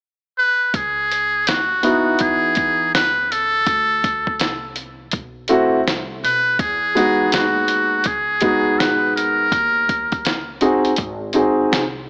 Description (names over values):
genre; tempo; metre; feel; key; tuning
hip hop, jazz-hop; 82 BPM; 4/4; swing 64% on 16ths; C# minor; A4 = 440 Hz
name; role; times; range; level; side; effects
trumpet with metal mute; melody; 0.4-10.6 s; F#4 to B4; -20 LUFS; equal; none
upright bass; bass; 0.7-12.1 s; G#1 to B2; -38 LUFS; equal; none
lo-fi sampler-style drum kit; drums; 0.7-11.9 s; hi-hat, kick drum, snare drum; -24 LUFS; equal; none
warm upright piano; accompaniment; 1.8-11.8 s; G#3 to G#4; -20 LUFS; equal; none
room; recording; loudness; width
moderate plate reverb, RT60 2.5 s; small speaker sound; -18 LUFS; mono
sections
0.7-12.1 A section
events
none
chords
0.0 N.C.; 0.7 C#m11; 3.7 D7(no3); 6.6 Emaj7; 9.5 D#m7; 11.0 G#7